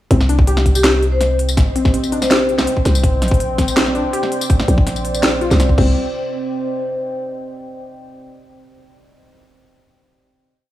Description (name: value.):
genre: half-time drum and bass.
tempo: 164 BPM.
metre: 4/4.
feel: half-time.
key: C minor.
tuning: A4 = 438 Hz.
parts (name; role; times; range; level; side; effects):
deep dark ambient pad; sustained chords; 1.0-7.4 s; C4 to G5; -23 LUFS; right 1 dB; chorus, built-in reverb, sidechain pumping.
warbly dusty pluck; arpeggios; 0.1-5.9 s; C4 to G4; -22 LUFS; left 1 dB; chorus, tape echo.
growling 808-style bass; bass; 0.1-6.0 s; Bb1 to C2; -17 LUFS; equal; none.
drum and bass drum kit; drums; 0.1-5.9 s; crash cymbal, hi-hat, snare drum, tambourine; -19 LUFS; equal; studio reverb.
electronic kick drum; drums; 0.1-5.9 s; none; -15 LUFS; equal; studio reverb.
vibraphone with medium mallets; melody; 0.8-2.5 s; G4 to C5; -21 LUFS; left 2 dB; digital delay.
room: light reverb, digital ambience.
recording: small room ambience.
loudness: -14 LUFS.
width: side -14 dB against mid.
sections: 0.1-6.0 drop; 6.0-7.4 final chord.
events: drop 0.1-6.0.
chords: 0.1 Cm; 5.8 N.C.; 6.0 Cm.